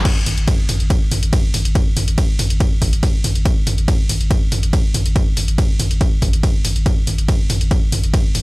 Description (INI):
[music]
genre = driving peak-time techno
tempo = 141 BPM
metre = 4/4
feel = straight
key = unclear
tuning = A4 = 440 Hz
[part]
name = saturated sub bass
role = bass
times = 0.0-8.4 s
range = G#1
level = -19 LUFS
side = equal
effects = overdrive, sidechain pumping, low-pass filter
[part]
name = electronic kick drum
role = drums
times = 0.1-8.2 s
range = none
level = -16 LUFS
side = equal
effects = none
[part]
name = punchy analog drum machine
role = drums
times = 0.1-8.4 s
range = crash cymbal, hi-hat, ride cymbal, toms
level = -21 LUFS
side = equal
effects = none
[sound]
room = little or no reverb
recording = none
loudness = -14 LUFS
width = side -22 dB against mid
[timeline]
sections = 0.0-8.4 A section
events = none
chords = none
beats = | 0.05 0.48 0.90 1.33 | 1.75 2.18 2.60 3.03 | 3.46 3.88 4.31 4.73 | 5.16 5.58 6.01 6.43 | 6.86 7.29 7.71 8.14